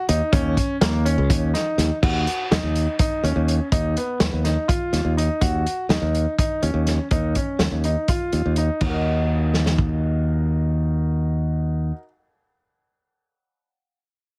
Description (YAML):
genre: progressive instrumental, band music in an uneven meter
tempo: 247 BPM (eighths)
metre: 7/8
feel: straight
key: Eb minor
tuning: A4 = 441 Hz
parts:
  - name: clear concert grand piano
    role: arpeggios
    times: 0.0-12.0 s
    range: Bb3 to Eb5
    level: -29 LUFS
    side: equal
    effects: none
  - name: modern bright fingered electric bass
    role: bass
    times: 0.1-11.9 s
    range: Db2 to Eb2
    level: -23 LUFS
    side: equal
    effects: none
  - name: vintage drum kit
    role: drums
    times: 0.1-9.9 s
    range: crash cymbal, hi-hat, kick drum, snare drum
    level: -25 LUFS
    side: equal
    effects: none
room: little or no reverb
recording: heavily compressed radio sound, multiband compression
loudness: -22 LUFS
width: mono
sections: 0.0-2.0 A section; 2.0-8.8 B section; 8.8-12.2 C section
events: none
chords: 0.3 Eb5; 2.0 Ebm; 3.7 Ebsus2; 5.4 Ebm7; 7.1 Db/Eb; 8.8 Ebm